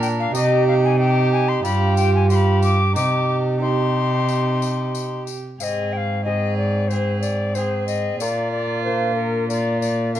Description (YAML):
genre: classical, renaissance-style consort dance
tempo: 92 BPM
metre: 4/4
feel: straight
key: C minor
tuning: A4 = 435 Hz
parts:
  - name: alto recorder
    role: melody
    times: 0.0-10.2 s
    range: Bb4 to D6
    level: -24 LUFS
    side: left 4 dB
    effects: none
  - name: warm violin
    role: second line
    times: 0.0-10.2 s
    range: F4 to Bb4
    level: -29 LUFS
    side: right 3 dB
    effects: none
  - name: lute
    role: accompaniment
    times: 0.0-10.2 s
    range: G2 to Eb5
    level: -26 LUFS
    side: right 6 dB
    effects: none
  - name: warm bassoon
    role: accompaniment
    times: 0.0-10.2 s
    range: Bb3 to F4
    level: -27 LUFS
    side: left 3 dB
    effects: none
  - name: rich cello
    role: bass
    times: 0.0-10.2 s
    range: G2 to C3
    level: -21 LUFS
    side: equal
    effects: none
  - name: tambourine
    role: percussion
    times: 0.0-10.2 s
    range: none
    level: -35 LUFS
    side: left 9 dB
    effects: none
room: moderate stone room reverb, RT60 0.9 s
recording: dark, warm production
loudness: -18 LUFS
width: side -11 dB against mid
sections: 0.0-5.6 A section; 5.6-10.2 B section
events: none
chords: 0.3 Cm; 1.6 G5; 3.0 Cm; 5.6 Ab; 8.2 Bb